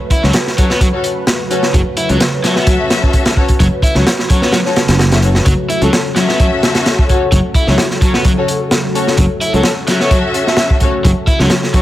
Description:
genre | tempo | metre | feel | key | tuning
breakbeat, breaks | 129 BPM | 4/4 | swing 53% on 16ths | F# minor | A4 = 439 Hz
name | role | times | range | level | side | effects
phased analog pad | sustained chords | 0.0-11.8 s | C#3 to B4 | -21 LUFS | right 1 dB | phaser, chorus, sidechain pumping
overdriven semi-hollow guitar | riff | 0.1-11.8 s | F#3 to E4 | -18 LUFS | equal | vintage 12-bit sampler grit, dub echo
crunchy breakbeat drum kit | drums | 0.1-11.8 s | hi-hat, kick drum, snare drum | -13 LUFS | equal | none
warm studio string section | stabs | 0.2-11.8 s | C#4 to E5 | -19 LUFS | left 4 dB | vintage 12-bit sampler grit, dub echo
modern bright fingered electric bass | bass | 0.2-11.5 s | F#1 to C#2 | -13 LUFS | equal | none
breathy flute-like synth lead | melody | 5.8-10.7 s | E4 to E5 | -23 LUFS | equal | chorus, telephone sound, dub echo
room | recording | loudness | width
small room ambience | none | -10 LUFS | side -14 dB against mid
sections
0.0-11.8 A section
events
none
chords
0.0 F#m

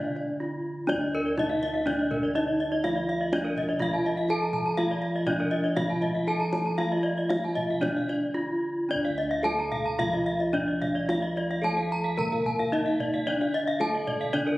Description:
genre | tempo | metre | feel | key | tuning
Balinese gamelan | 110-123 BPM | 4/4 | straight | D pelog | A4 = 438 Hz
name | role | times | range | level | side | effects
gamelan-type bronze metallophone | melody | 0.0-14.6 s | D4 to Bb4-20c | -29 LUFS | equal | none
gamelan-type bronze metallophone | accompaniment | 0.0-14.6 s | D3 to Bb3-20c | -35 LUFS | equal | none
gamelan-type bronze metallophone | arpeggios | 0.0-14.5 s | Bb4-20c to Bb5-20c | -30 LUFS | left 1 dB | none
gamelan-type bronze metallophone | arpeggios | 0.0-14.6 s | Bb4-20c to Bb5-20c | -36 LUFS | right 2 dB | none
gamelan-type bossed gongs | bass | 0.0-14.6 s | D2 to F4-30c | -37 LUFS | equal | none
kendang | percussion | 0.2-14.5 s | none | -35 LUFS | equal | none
room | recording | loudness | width
wet scoring stage reverb, RT60 1.5 s | recorded on a phone in the room, club reverb, compression | -25 LUFS | side -18 dB against mid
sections
0.9-8.9 A section; 8.9-14.6 B section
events
break 0.2-0.9, 8.1-8.9; drum fill 8.2-8.9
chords
none

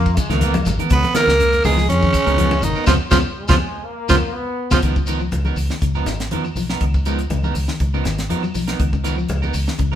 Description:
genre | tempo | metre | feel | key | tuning
afrobeat | 122 BPM | 4/4 | swing 54% on 16ths | Db mixolydian | A4 = 440 Hz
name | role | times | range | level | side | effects
growling tenor saxophone | melody | 0.0-4.8 s | Db4 to Cb5 | -19 LUFS | right 2 dB | none
breathy tenor saxophone | second line | 0.0-4.8 s | Db3 to Cb4 | -24 LUFS | right 5 dB | none
clear trombone section | second line | 0.0-4.8 s | Ab3 to Cb4 | -27 LUFS | left 3 dB | none
electric guitar at the edge of break-up | arpeggios | 0.0-10.0 s | Cb3 to Ab3 | -26 LUFS | left 6 dB | none
fingered electric bass | bass | 0.0-10.0 s | Ab1 to F2 | -21 LUFS | equal | none
tight funk drum kit | drums | 0.1-9.9 s | hi-hat, kick drum, snare drum | -22 LUFS | equal | none
shekere | percussion | 0.1-10.0 s | none | -31 LUFS | left 2 dB | none
electric guitar at the edge of break-up | stabs | 0.2-10.0 s | F3 to Bb4 | -27 LUFS | right 6 dB | none
claves | percussion | 0.2-9.7 s | none | -37 LUFS | right 1 dB | none
congas | percussion | 0.3-10.0 s | none | -26 LUFS | left 1 dB | none
room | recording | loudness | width
moderate stone room reverb, RT60 1.0 s | band playing live in one room | -16 LUFS | side -10 dB against mid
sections
0.0-4.8 A section; 4.8-10.0 B section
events
band accent 2.9-4.8; drum fill 4.2-4.8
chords
0.0 Db13

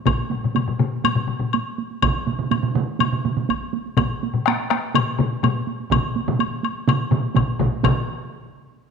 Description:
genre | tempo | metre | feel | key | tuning
japanese traditional, taiko drum ensemble | 124 BPM | 4/4 | straight | none | none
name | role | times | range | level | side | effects
solo taiko drums | percussion | 0.1-8.1 s | none | -26 LUFS | right 10 dB | none
taiko ensemble | percussion | 0.1-8.3 s | none | -22 LUFS | left 5 dB | none
taiko ensemble | percussion | 0.1-8.1 s | none | -29 LUFS | right 2 dB | none
woodblock | percussion | 0.1-8.1 s | none | -26 LUFS | left 8 dB | none
solo taiko drums | percussion | 2.0-8.3 s | none | -24 LUFS | right 5 dB | none
room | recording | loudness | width
wet echo chamber reverb, RT60 1.6 s, small room ambience | 1960s-style stereo with parts hard left and right | -19 LUFS | side -6 dB against mid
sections
0.0-7.8 A section; 7.8-8.9 B section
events
none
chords
none

